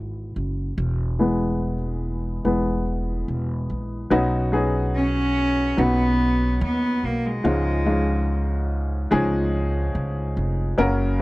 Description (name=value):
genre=pop ballad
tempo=72 BPM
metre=4/4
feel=straight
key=B major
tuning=A4 = 440 Hz
part: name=warm upright piano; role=accompaniment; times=0.0-11.2 s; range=G#2 to A#4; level=-24 LUFS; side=left 1 dB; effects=none
part: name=upright bass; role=bass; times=0.0-11.2 s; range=E1 to D#2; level=-24 LUFS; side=equal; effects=none
part: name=warm cello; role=melody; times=5.0-8.5 s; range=G#3 to C#4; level=-23 LUFS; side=equal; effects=slapback echo
room=little or no reverb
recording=dry, close 1970s-style studio recording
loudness=-20 LUFS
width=side -20 dB against mid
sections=0.0-4.1 A section; 4.1-11.2 B section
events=upright piano solo 0.0-4.1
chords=0.0 E; 4.1 Badd9; 7.4 C#add9